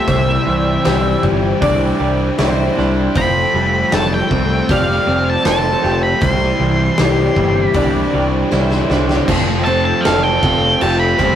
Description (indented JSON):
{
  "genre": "rock, shoegaze and dream pop",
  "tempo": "78 BPM",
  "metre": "4/4",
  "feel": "straight",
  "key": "C major",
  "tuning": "A4 = 439 Hz",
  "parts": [
    { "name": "octave-fuzz lead guitar", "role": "melody", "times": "0.0-11.4 s", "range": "E5 to C6", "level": "-19 LUFS", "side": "equal", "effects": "distortion" },
    { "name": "hollow soft pad", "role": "sustained chords", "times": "0.0-11.4 s", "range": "E4 to G5", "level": "-24 LUFS", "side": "equal", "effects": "ensemble chorus" },
    { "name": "picked twelve-string acoustic guitar", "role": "arpeggios", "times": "0.0-11.4 s", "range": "F4 to D5", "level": "-22 LUFS", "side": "left 4 dB", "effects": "none" },
    { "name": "direct-recorded clean electric guitar", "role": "riff", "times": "0.0-11.4 s", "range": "C3 to A4", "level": "-20 LUFS", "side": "right 4 dB", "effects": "none" },
    { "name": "raw garage guitar", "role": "riff", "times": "0.0-11.4 s", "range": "C3 to F4", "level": "-26 LUFS", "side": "equal", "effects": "overdrive" },
    { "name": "thick fuzz guitar", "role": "riff", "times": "0.0-11.4 s", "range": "C3 to G4", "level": "-25 LUFS", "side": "left 6 dB", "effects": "distortion" },
    { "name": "growling picked electric bass", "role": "bass", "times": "0.1-11.4 s", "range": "F1 to C2", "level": "-19 LUFS", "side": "equal", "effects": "overdrive" },
    { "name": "big rock drum kit", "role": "drums", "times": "0.1-11.4 s", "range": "crash cymbal, hi-hat, kick drum, snare drum", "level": "-20 LUFS", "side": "equal", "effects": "none" }
  ],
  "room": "moderate stone room reverb, RT60 1.1 s",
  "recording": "rough rehearsal-room recording",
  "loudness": "-13 LUFS",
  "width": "side -10 dB against mid",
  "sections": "0.0-9.3 A section; 9.3-11.4 B section",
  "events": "drum fill 8.5-9.3",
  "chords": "0.1 Cadd9; 3.2 Fadd9; 6.2 Cadd9; 9.3 Fadd9"
}